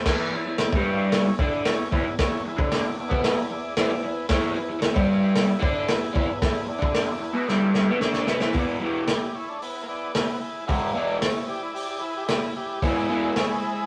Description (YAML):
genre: garage rock duo or trio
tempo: 113 BPM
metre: 4/4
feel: straight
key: E mixolydian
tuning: A4 = 440 Hz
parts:
  - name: combo organ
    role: sustained chords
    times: 0.0-13.9 s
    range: E4 to D5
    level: -35 LUFS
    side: equal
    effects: none
  - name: raw garage guitar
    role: riff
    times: 0.1-13.3 s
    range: E2 to E4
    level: -27 LUFS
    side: equal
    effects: overdrive, phaser
  - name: crunchy breakbeat drum kit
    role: drums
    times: 0.1-13.5 s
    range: crash cymbal, hi-hat, kick drum, snare drum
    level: -28 LUFS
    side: equal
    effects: none
  - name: overdriven combo organ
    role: melody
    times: 8.6-13.9 s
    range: G#3 to D5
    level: -33 LUFS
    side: equal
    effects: none
room: moderate booth ambience, RT60 0.2 s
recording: rough rehearsal-room recording, tube saturation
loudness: -24 LUFS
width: mono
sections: 0.1-8.6 A section; 8.6-13.9 B section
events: drum fill 7.5-8.6; transistor combo organ solo 8.6-13.9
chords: 0.1 E